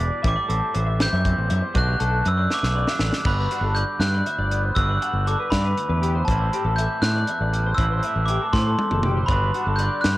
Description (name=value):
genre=math rock and midwest emo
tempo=79 BPM (dotted quarters)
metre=6/8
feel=straight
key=G major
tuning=A4 = 440 Hz
part: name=glockenspiel with soft plastic mallets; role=melody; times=0.0-10.2 s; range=A5 to G6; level=-25 LUFS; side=equal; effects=cassette tape
part: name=twangy electric guitar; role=accompaniment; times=0.0-10.2 s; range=D2 to F#4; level=-31 LUFS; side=right 8 dB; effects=cassette tape
part: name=electric guitar through a small old amp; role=arpeggios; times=0.0-10.2 s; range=F#4 to F#5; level=-31 LUFS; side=left 7 dB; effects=analog chorus, cassette tape
part: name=growling fingered electric bass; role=bass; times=0.0-10.2 s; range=F#1 to A2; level=-22 LUFS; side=equal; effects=overdrive
part: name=crisp fusion drum kit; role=drums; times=0.0-10.2 s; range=crash cymbal, hi-hat, kick drum, snare drum, toms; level=-26 LUFS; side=equal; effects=cassette tape
room=little or no reverb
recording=home recording on cassette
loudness=-19 LUFS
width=side -17 dB against mid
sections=0.0-3.3 A section; 3.3-10.2 B section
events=drum fill 2.5-3.3, 8.5-9.3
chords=0.2 Am7; 1.7 Bm7; 3.3 Gmaj7; 6.3 Am7; 9.3 Gmaj7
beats=| 0.24 0.99 | 1.75 2.50 | 3.25 4.01 | 4.76 5.52 | 6.28 7.03 | 7.79 8.54 | 9.30 10.05